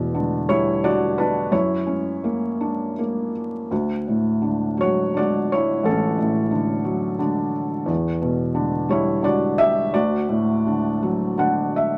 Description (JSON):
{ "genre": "classical, lyrical solo piano", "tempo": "54-60 BPM (dotted quarters)", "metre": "6/8", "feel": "rubato", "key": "D major", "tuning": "A4 = 440 Hz", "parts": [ { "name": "felt-muted upright piano", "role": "solo", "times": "0.0-12.0 s", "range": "A1 to F#5", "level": "-22 LUFS", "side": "equal", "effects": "none" } ], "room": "wet small room reverb, RT60 0.5 s", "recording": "vinyl crackle", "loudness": "-22 LUFS", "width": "mono", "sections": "0.0-12.0 A section", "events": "felt piano fill 11.0-12.0", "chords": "0.0 Em7; 1.5 F#7b13; 3.7 Dmaj7; 7.9 Em7; 9.9 D" }